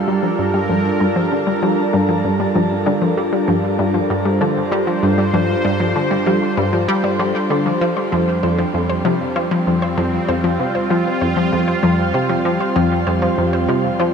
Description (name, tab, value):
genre	ambient, sequencer-driven space music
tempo	97 BPM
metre	4/4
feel	straight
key	G minor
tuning	A4 = 439 Hz
part	sweeping resonant pad	sustained chords	0.0-14.1 s	G3 to C5	-18 LUFS	right 1 dB	chorus
part	wide unison pluck	arpeggios	0.1-14.1 s	F3 to C5	-22 LUFS	left 2 dB	auto-pan, tape echo
part	plucky analog bass	riff	0.1-14.1 s	F2 to G3	-20 LUFS	equal	wide subtle chorus, tape echo
room	wet shimmer reverb, RT60 7.6 s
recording	none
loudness	-15 LUFS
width	side -6 dB against mid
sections	0.0-14.1 A section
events	none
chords	0.0 Gm7; 7.8 Fsus2